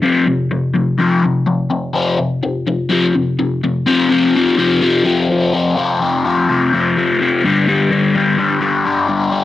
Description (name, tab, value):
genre	rock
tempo	126 BPM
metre	4/4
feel	straight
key	unclear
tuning	A4 = 440 Hz
part	crunchy overdriven guitar	solo	0.0-9.4 s	F2 to G3	-13 LUFS	left 2 dB	phaser, cassette tape
room	moderate studio reverb, RT60 0.6 s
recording	home recording on cassette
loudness	-13 LUFS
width	side -13 dB against mid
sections	0.0-3.9 A section; 3.9-9.4 B section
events	none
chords	0.0 F5; 7.4 G5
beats	| 0.02 0.50 0.98 1.47 | 1.95 2.43 2.91 3.38 | 3.86 4.34 4.82 5.29 | 5.77 6.24 6.71 7.19 | 7.66 8.14 8.61 9.08